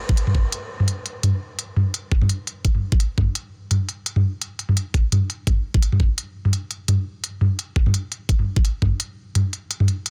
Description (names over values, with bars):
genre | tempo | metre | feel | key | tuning
drum and bass | 170 BPM | 4/4 | swing 55% on 16ths, half-time | none | none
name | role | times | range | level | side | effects
electronic kick drum | drums | 0.1-8.9 s | none | -21 LUFS | equal | none
industrial drum kit | drums | 0.2-10.1 s | hi-hat, toms | -23 LUFS | equal | none
room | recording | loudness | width
little or no reverb | dense, heavily limited modern master | -22 LUFS | mono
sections
0.0-10.1 A section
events
none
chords
none